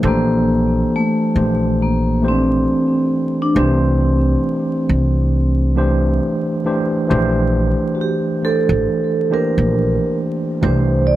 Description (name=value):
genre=lo-fi hip hop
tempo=68 BPM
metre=4/4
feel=swing 59% on 16ths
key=unclear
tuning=A4 = 441 Hz
part: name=vibraphone with soft mallets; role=melody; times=0.0-11.2 s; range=A3 to D5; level=-19 LUFS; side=equal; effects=low-pass filter
part: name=mellow tine electric piano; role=accompaniment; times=0.0-11.2 s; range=E3 to C5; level=-18 LUFS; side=right 1 dB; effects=medium stereo tremolo, low-pass filter
part: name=upright bass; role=bass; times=0.0-11.2 s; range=A1 to C2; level=-18 LUFS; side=equal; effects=none
room=light reverb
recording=vinyl crackle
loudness=-14 LUFS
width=side -14 dB against mid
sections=0.0-7.1 A section; 7.1-11.2 B section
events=none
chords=0.0 Bb69; 3.6 C69; 7.1 Bb69; 10.6 C69